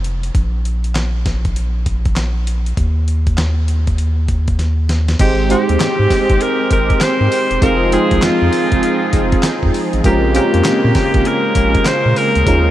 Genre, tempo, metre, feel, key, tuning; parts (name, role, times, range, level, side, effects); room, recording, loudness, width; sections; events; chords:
R&B, new jack swing; 99 BPM; 4/4; swing 64% on 16ths; A4 = 440 Hz
round analog bass; bass; 0.0-12.7 s; E1 to Bb2; -16 LUFS; equal
dusty soul sampler-style drum kit; drums; 0.0-12.6 s; crash cymbal, handclaps, hi-hat, kick drum, snare drum, tambourine; -19 LUFS; equal
bright alto saxophone; melody; 5.2-12.7 s; F4 to C5; -17 LUFS; equal
warm analog keys; accompaniment; 5.2-12.7 s; Ab3 to C5; -18 LUFS; right 2 dB; chorus
warm analog pad; sustained chords; 5.2-12.7 s; Db3 to Ab4; -20 LUFS; equal; chorus, tremolo
moderate huge ambient reverb, RT60 8.8 s; dreamy mix soaked in reverb; -12 LUFS; side -13 dB against mid
0.0-5.2 A section; 5.2-12.7 B section
drum fill 4.6-5.2
0.0 N.C.; 5.2 Abmaj7; 7.6 Fm7; 10.0 Bbm9